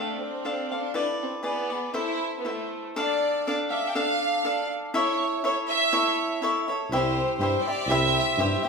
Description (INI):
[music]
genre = mexican folk, mariachi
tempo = 122 BPM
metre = 2/4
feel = rubato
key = D minor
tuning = A4 = 440 Hz
[part]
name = clear studio violin section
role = melody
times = 0.0-8.6 s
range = A3 to G5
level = -27 LUFS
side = right 1 dB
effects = none
[part]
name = cavaquinho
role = accompaniment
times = 0.0-8.7 s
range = D4 to F5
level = -26 LUFS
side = left 1 dB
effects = none
[part]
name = mellow tuba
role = bass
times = 6.9-8.5 s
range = C2 to G2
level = -28 LUFS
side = right 2 dB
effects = none
[sound]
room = wet large studio reverb, RT60 1.3 s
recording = band playing live in one room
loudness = -23 LUFS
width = side -4 dB against mid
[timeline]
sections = 0.0-3.0 A section; 3.0-8.7 B section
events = none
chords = 0.0 Dm; 1.0 E7sus4; 1.5 E7; 2.0 Am; 3.0 Dm; 4.9 A; 6.9 C